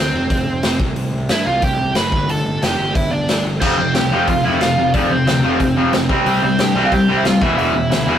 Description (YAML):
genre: punk rock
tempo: 181 BPM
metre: 4/4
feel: straight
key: unclear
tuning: A4 = 439 Hz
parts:
  - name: bluesy overdriven lead guitar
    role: melody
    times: 0.0-8.2 s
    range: C4 to B5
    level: -20 LUFS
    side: right 2 dB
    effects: distortion
  - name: fuzz picked electric bass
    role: bass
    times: 0.0-8.2 s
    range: E1 to G2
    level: -23 LUFS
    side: equal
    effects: overdrive
  - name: raw garage drum kit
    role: drums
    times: 0.3-8.0 s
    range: crash cymbal, hi-hat, kick drum, snare drum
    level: -20 LUFS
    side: equal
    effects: none
  - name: cranked stack guitar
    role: riff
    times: 3.6-8.2 s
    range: E2 to C4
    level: -21 LUFS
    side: right 3 dB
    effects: overdrive
  - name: distorted electric guitar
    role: riff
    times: 3.6-8.2 s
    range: E2 to C4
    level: -18 LUFS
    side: left 4 dB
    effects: distortion
room: moderate studio reverb, RT60 0.6 s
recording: rough rehearsal-room recording, warm saturation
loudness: -14 LUFS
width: side -10 dB against mid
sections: 0.0-8.2 A section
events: half time 0.0-8.2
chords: 0.0 F5; 0.8 C; 2.1 G; 3.6 F5; 6.1 C5; 7.4 E5